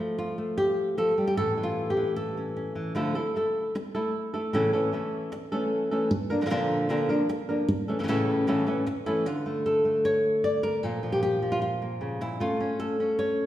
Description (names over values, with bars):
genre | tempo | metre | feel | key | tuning
flamenco | 152 BPM | 4/4 | straight | A phrygian dominant | A4 = 440 Hz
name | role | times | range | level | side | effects
flamenco guitar | solo | 0.0-13.5 s | A2 to D5 | -25 LUFS | equal | none
room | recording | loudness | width
wet recital hall reverb, RT60 1.6 s | recorded in a church or concert hall | -25 LUFS | side -13 dB against mid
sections
0.0-3.0 A section; 3.0-9.3 B section; 9.3-13.5 C section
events
none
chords
0.0 F; 1.4 A; 3.0 Dmadd9; 4.5 A; 6.1 Bb; 7.7 A; 9.3 Dm; 10.8 Bb; 12.4 A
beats
0.18 0.58 0.97 | 1.37 1.77 2.16 2.56 | 2.95 3.35 3.74 4.13 | 4.53 4.92 5.32 5.71 | 6.11 6.50 6.89 7.29 | 7.68 8.08 8.47 8.87 | 9.26 9.65 10.05 10.44 | 10.84 11.23 11.62 12.02 | 12.41 12.80 13.20